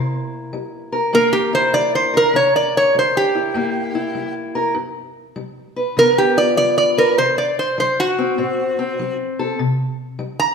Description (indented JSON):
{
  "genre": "acoustic country blues, solo or duo",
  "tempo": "99 BPM",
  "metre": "4/4",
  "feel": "swing 66% on 8ths",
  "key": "unclear",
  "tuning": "A4 = 440 Hz",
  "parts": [
    { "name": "fingerpicked steel-string acoustic guitar", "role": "accompaniment", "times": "0.0-10.5 s", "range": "G2 to B4", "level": "-21 LUFS", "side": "left 2 dB", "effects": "none" },
    { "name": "metal-body resonator slide guitar", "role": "melody", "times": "1.1-10.5 s", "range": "F#4 to Bb5", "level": "-15 LUFS", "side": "right 1 dB", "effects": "none" }
  ],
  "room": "wet recital hall reverb, RT60 1.4 s",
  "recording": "recorded in a church or concert hall",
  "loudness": "-15 LUFS",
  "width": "side -6 dB against mid",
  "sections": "0.0-10.5 A section",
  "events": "resonator guitar played with a steel bar solo 0.0-10.5",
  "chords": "0.0 C7; 2.3 C#dim7; 4.8 G7; 7.2 D7; 9.6 C5"
}